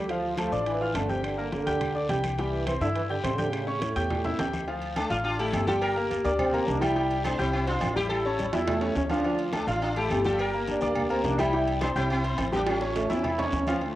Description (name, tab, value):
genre	latin, salsa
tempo	210 BPM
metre	4/4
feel	straight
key	D minor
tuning	A4 = 440 Hz
part	mellow trombone section	second line	0.0-13.8 s	A2 to E4	-30 LUFS	right 1 dB	cassette tape
part	bright concert grand piano	accompaniment	0.0-14.0 s	D3 to G6	-29 LUFS	left 1 dB	cassette tape
part	upright bass	bass	0.0-14.0 s	G1 to A2	-32 LUFS	equal	none
part	congas	percussion	0.1-14.0 s	none	-38 LUFS	left 1 dB	none
part	guiro	percussion	0.1-14.0 s	none	-46 LUFS	left 2 dB	none
part	timbales and agogo bells	percussion	0.1-14.0 s	none	-35 LUFS	right 4 dB	none
part	claves	percussion	0.4-13.8 s	none	-47 LUFS	left 2 dB	none
part	sitar	melody	5.0-13.5 s	G3 to Bb4	-30 LUFS	left 1 dB	none
room	moderate lush hall reverb, RT60 2.4 s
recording	home recording on cassette, faint mains hum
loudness	-24 LUFS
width	side -14 dB against mid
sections	0.0-4.7 A section; 4.7-13.8 B section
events	drum fill 4.1-4.7, 8.5-9.2, 12.7-13.8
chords	0.1 Dm; 1.2 Gm; 2.4 C; 3.5 A7; 4.7 Dm; 5.8 Gm; 7.0 C; 8.1 A7; 9.2 Dm; 10.4 Gm; 11.5 C; 12.7 A7